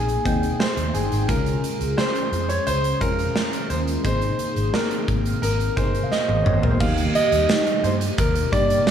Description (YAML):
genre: 1980s-style pop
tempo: 87 BPM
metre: 4/4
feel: straight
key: unclear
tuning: A4 = 438 Hz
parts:
  - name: warm baby grand piano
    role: melody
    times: 0.0-8.9 s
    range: Ab4 to F5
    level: -24 LUFS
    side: right 1 dB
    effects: slapback echo
  - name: FM electric piano with soft pad layer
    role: accompaniment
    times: 0.0-8.9 s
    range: G3 to G5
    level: -27 LUFS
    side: left 2 dB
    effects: chorus, phaser, slapback echo
  - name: vintage muted fingered electric bass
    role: bass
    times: 0.0-8.8 s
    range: G1 to G2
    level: -24 LUFS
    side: equal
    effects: none
  - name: big rock drum kit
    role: drums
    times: 0.1-8.9 s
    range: crash cymbal, hi-hat, kick drum, snare drum, tambourine, toms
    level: -24 LUFS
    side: equal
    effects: none
room: moderate lush hall reverb, RT60 2.6 s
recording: big arena sound, small room reverb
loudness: -19 LUFS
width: side -8 dB against mid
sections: 0.0-6.8 A section; 6.8-8.9 B section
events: drum fill 6.1-6.8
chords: 0.0 Abadd9; 1.3 Db; 4.0 Abadd9; 6.8 Ebmaj7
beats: 0.60 | 1.29 1.98 2.67 3.36 | 4.05 4.74 5.43 6.12 | 6.81 7.50 8.19 8.88